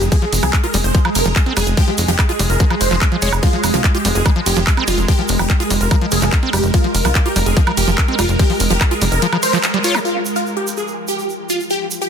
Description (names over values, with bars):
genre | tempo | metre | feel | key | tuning
psychedelic trance | 145 BPM | 4/4 | straight | F minor | A4 = 440 Hz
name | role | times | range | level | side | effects
supersaw stab | melody | 0.0-12.1 s | F4 to Db5 | -21 LUFS | equal | phaser, sidechain pumping, dub echo
swarming drone | sustained chords | 0.0-12.1 s | F3 to Bb4 | -22 LUFS | right 2 dB | built-in reverb, sidechain pumping
plucky analog bass | bass | 0.0-9.2 s | F1 to C2 | -18 LUFS | left 1 dB | none
garage drum kit | drums | 0.0-10.0 s | handclaps, hi-hat, ride cymbal, woodblock | -21 LUFS | right 1 dB | low-pass filter on hats, low-pass filter on perc, low-pass filter on snare, low-pass filter on cymbals
egg shaker | percussion | 0.0-12.1 s | none | -28 LUFS | right 5 dB | none
screaming distorted acid line | riff | 0.1-10.0 s | F3 to F4 | -22 LUFS | moving between left 3 dB and right 4 dB | distortion, chorus, auto-pan, sidechain pumping, tape echo
electronic kick drum | drums | 0.1-8.9 s | none | -15 LUFS | equal | none
room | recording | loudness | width
light reverb, digital ambience | dense, heavily limited modern master | -13 LUFS | side -7 dB against mid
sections
0.0-10.1 A section; 10.1-12.1 B section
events
drop 0.0-10.1; band accent 9.6; filter sweep on synth drone 10.1-12.1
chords
0.0 F5; 10.1 Fsus2